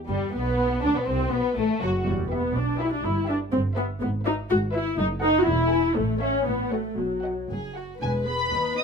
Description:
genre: quick classical-period movement for string orchestra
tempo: 122 BPM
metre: 2/4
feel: straight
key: E minor, E major from 4.0 s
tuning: A4 = 440 Hz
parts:
  - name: warm symphonic violin section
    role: melody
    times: 0.1-8.8 s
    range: G3 to D#6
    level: -30 LUFS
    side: left 2 dB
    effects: none
  - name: warm chamber violin section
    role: second line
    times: 0.1-8.8 s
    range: G3 to D#5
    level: -34 LUFS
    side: left 3 dB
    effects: none
  - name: dark symphonic viola section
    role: accompaniment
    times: 0.1-8.8 s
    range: F#3 to D#5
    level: -25 LUFS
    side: left 1 dB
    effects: none
  - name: rich symphonic cello section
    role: bass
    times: 0.1-8.8 s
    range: D#2 to D3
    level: -33 LUFS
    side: right 1 dB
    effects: none
  - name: rich symphonic double bass section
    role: bass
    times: 0.1-8.8 s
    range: E1 to D#2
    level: -30 LUFS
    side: right 1 dB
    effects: none
room: moderate studio reverb, RT60 0.8 s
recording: none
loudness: -22 LUFS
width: side -5 dB against mid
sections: 0.1-8.0 A section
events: none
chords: 0.1 G; 1.1 B5; 2.1 Em; 3.0 Em/G; 4.0 E/G#; 5.0 B7/F#; 5.5 E; 6.0 A; 6.5 F#m/A; 7.0 B5; 8.0 E

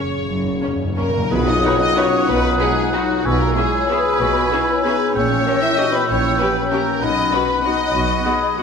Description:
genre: classical, orchestral ballroom waltz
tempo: 164-208 BPM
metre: 3/4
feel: rubato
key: B major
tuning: A4 = 442 Hz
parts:
  - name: rich symphonic violin section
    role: melody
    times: 0.0-8.6 s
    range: C#5 to F#5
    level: -36 LUFS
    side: left 2 dB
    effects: none
  - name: dark French horn section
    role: sustained chords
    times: 0.0-8.6 s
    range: C#3 to E4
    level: -25 LUFS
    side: left 3 dB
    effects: none
  - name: concert harp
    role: arpeggios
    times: 0.0-8.6 s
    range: F#2 to C#5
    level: -26 LUFS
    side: left 7 dB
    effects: none
  - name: timpani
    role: percussion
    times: 0.0-3.7 s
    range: F#2 to B2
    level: -27 LUFS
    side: equal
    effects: none
  - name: dark symphonic cello section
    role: bass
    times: 0.3-8.2 s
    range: F#2 to B2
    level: -28 LUFS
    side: right 4 dB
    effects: none
  - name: rich studio double bass section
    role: bass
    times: 0.3-8.2 s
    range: F#1 to B1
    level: -26 LUFS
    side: right 3 dB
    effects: none
  - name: warm symphonic violin section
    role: second line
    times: 0.6-8.6 s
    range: C#4 to E5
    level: -22 LUFS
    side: left 1 dB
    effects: none
  - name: warm studio viola section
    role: accompaniment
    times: 0.6-8.6 s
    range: A#3 to B4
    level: -28 LUFS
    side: right 1 dB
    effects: none
  - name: silver concert flute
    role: second line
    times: 1.3-8.6 s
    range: B5 to E6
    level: -23 LUFS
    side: left 2 dB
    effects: none
  - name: warm clarinet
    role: second line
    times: 1.3-8.6 s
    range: C#4 to A#4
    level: -25 LUFS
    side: left 2 dB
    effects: none
  - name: warm oboe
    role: second line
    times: 1.3-8.6 s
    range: F#5 to G#5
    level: -25 LUFS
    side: right 1 dB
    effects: none
  - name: tam-tam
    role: percussion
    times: 1.3-2.6 s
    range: none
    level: -29 LUFS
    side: left 1 dB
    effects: none
room: wet scoring stage reverb, RT60 1.8 s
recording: minimal, uncompressed stereo recording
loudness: -15 LUFS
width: side -6 dB against mid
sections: 0.0-1.3 A section; 1.3-8.6 B section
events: timpani fill 0.0-1.3; band accent 1.3-1.6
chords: 0.0 F#; 1.3 B; 3.2 C#m7/B; 5.2 A#dim7; 7.0 B

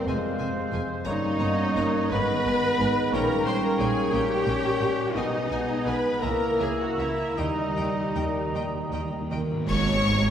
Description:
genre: classical, slow romantic movement for symphony orchestra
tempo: 50-61 BPM (dotted quarters)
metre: 6/8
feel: rubato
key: G# minor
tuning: A4 = 438 Hz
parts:
  - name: rich studio violin section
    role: melody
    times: 0.0-10.3 s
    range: C5 to C#6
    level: -34 LUFS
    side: left 3 dB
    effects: none
  - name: concert flute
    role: second line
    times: 0.0-9.4 s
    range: D#5 to A#5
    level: -36 LUFS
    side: right 3 dB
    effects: none
  - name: dark clarinet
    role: second line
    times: 0.0-9.1 s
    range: G3 to D#4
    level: -34 LUFS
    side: left 2 dB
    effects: none
  - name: mellow bassoon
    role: accompaniment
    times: 0.0-9.3 s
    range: G3 to B3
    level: -34 LUFS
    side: right 1 dB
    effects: none
  - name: rich symphonic viola section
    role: accompaniment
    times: 0.0-10.3 s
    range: C4 to C#5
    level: -29 LUFS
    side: right 1 dB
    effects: none
  - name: dark French horn section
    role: sustained chords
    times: 0.0-9.3 s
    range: G3 to E4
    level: -33 LUFS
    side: left 2 dB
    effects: none
  - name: concert harp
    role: arpeggios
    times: 0.0-10.3 s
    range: E2 to Db6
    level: -32 LUFS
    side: left 2 dB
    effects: none
  - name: clear studio violin section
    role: second line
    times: 0.1-10.3 s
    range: B4 to A#5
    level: -38 LUFS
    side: left 1 dB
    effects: none
  - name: warm cor anglais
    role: second line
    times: 0.1-9.4 s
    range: B4 to E5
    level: -34 LUFS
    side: right 1 dB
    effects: none
  - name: rich symphonic cello section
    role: bass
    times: 0.1-10.3 s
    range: F2 to D#3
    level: -33 LUFS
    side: right 2 dB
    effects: none
  - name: rich symphonic double bass section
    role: bass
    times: 0.1-10.3 s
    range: F1 to D#2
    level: -34 LUFS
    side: right 2 dB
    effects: none
  - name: cymbal swell, clash cymbals and concert bass drum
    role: percussion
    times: 5.2-10.3 s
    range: none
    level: -38 LUFS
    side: equal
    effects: none
  - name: timpani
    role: percussion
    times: 7.4-10.3 s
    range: G#2 to D#3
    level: -33 LUFS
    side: right 3 dB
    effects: none
room: wet church reverb, RT60 2.7 s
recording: recorded in a church or concert hall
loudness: -23 LUFS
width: side -9 dB against mid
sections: 0.0-9.7 A section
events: timpani fill 7.4-9.7; band accent 9.7-10.3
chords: 0.1 Fm; 1.1 D#7/G; 2.1 G#m; 3.1 Gdim/Bb; 5.2 G#m/B; 6.2 A#dim/C#; 7.4 D#; 9.7 G#m

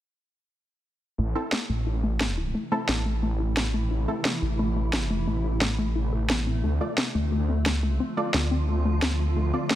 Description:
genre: dark technical drum and bass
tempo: 176 BPM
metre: 4/4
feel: straight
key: A minor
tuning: A4 = 440 Hz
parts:
  - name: swarming drone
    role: sustained chords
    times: 2.4-9.8 s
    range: C3 to F4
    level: -33 LUFS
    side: equal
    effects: built-in reverb
  - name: warbly dusty pluck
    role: arpeggios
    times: 1.2-9.8 s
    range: A3 to A4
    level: -31 LUFS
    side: left 3 dB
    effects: chorus, tape echo
  - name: snarling distorted saw bass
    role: bass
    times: 1.2-9.5 s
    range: A1 to D2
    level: -26 LUFS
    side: equal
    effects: distortion, tube saturation
  - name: orchestra-hit-like synth stab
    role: stabs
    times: 1.4-4.2, 6.8-9.6 s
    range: C4 to D5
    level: -32 LUFS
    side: right 1 dB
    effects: built-in reverb, tape echo
  - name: electronic snare drum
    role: drums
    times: 1.5-9.8 s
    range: none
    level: -28 LUFS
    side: equal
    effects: none
room: light reverb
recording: dense, heavily limited modern master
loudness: -23 LUFS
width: side -13 dB against mid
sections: 1.2-9.8 A section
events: none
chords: 1.2 Am; 6.6 Dm

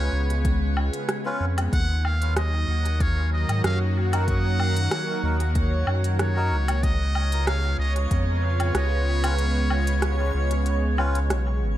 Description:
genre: ambient dub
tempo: 94 BPM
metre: 4/4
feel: swing 53% on 16ths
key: unclear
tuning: A4 = 440 Hz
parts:
  - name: trumpet with metal mute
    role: melody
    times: 0.0-11.3 s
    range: Db5 to Gb5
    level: -31 LUFS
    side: equal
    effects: dub echo
  - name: warm analog pad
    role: sustained chords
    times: 0.0-11.8 s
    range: Db3 to Cb5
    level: -30 LUFS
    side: right 1 dB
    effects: chorus
  - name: warm sub bass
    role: bass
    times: 0.0-11.8 s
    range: Ab1 to Ab2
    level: -23 LUFS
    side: equal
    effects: none
  - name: organic electronic drum kit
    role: drums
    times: 0.3-11.4 s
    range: hi-hat, rim click, woodblock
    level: -31 LUFS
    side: equal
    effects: studio reverb, dub echo
  - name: electronic kick drum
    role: drums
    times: 0.5-8.2 s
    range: none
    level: -25 LUFS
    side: equal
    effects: studio reverb
  - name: melodica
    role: stabs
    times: 1.3-11.2 s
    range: Db4 to Cb5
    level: -35 LUFS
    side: left 2 dB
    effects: dub echo
  - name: backwards swelling texture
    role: texture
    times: 2.5-11.8 s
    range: Db5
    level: -35 LUFS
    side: right 3 dB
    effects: built-in reverb
room: little or no reverb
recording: none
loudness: -21 LUFS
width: side -13 dB against mid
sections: 0.0-11.8 A section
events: kick drops out 9.4-11.8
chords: 0.0 Db7; 1.7 Ebm; 6.8 Db7

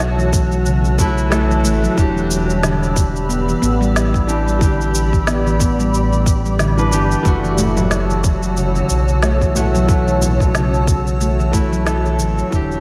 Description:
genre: organic downtempo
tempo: 91 BPM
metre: 4/4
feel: swing 57% on 16ths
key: unclear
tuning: A4 = 436 Hz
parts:
  - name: felt-muted upright piano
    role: accompaniment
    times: 0.0-12.8 s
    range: E3 to B4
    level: -25 LUFS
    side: equal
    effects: sidechain pumping, diffuse ambient delay
  - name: granular cloud pad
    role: sustained chords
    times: 0.0-12.8 s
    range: F#4 to F#6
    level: -26 LUFS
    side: equal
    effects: built-in reverb, lush chorus, sidechain pumping
  - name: round analog bass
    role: bass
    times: 0.0-12.8 s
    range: E1 to B1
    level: -21 LUFS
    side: equal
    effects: sidechain pumping
  - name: electronic shaker and snare drum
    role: drums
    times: 0.0-12.8 s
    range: none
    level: -26 LUFS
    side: equal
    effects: none
  - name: handpan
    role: arpeggios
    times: 0.2-12.8 s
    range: C#3 to B3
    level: -22 LUFS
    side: equal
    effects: diffuse ambient delay
  - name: electronic kick drum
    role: drums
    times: 0.3-12.7 s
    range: none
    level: -19 LUFS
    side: equal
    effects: none
  - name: bongos and congas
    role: percussion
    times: 7.6-12.3 s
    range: none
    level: -31 LUFS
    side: equal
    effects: none
room: moderate lush hall reverb, RT60 1.8 s, digital ambience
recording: dreamy mix soaked in reverb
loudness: -16 LUFS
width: mono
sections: 0.0-12.8 A section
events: fade-out 10.8-12.8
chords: 0.0 F#m7; 2.0 Em7; 7.3 F#m7

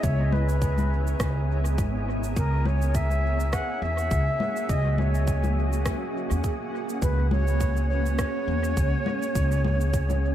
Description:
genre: ambient dub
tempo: 103 BPM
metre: 4/4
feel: swing 56% on 16ths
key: unclear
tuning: A4 = 437 Hz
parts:
  - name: silver concert flute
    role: melody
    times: 0.0-10.3 s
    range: A#4 to F#5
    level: -31 LUFS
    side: equal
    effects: dub echo
  - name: granular cloud pad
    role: sustained chords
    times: 0.0-10.3 s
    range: A#3 to A#5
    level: -32 LUFS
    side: equal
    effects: built-in reverb
  - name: upright bass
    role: bass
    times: 0.0-10.3 s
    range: G#1 to E2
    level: -24 LUFS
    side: equal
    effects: none
  - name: electronic cabasa, congas and rim click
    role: drums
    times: 0.0-10.2 s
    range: none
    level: -34 LUFS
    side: left 2 dB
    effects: studio reverb, dub echo
  - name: electronic kick drum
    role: drums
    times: 0.0-10.1 s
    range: none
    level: -28 LUFS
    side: equal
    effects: studio reverb
  - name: wind-like tuned noise texture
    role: texture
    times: 0.0-10.3 s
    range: G#4 to G#5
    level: -37 LUFS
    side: right 2 dB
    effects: built-in reverb
room: light reverb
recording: echo-heavy mix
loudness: -23 LUFS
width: side -11 dB against mid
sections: 0.0-10.3 A section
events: none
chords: 0.0 C#m7; 2.4 F#/C#

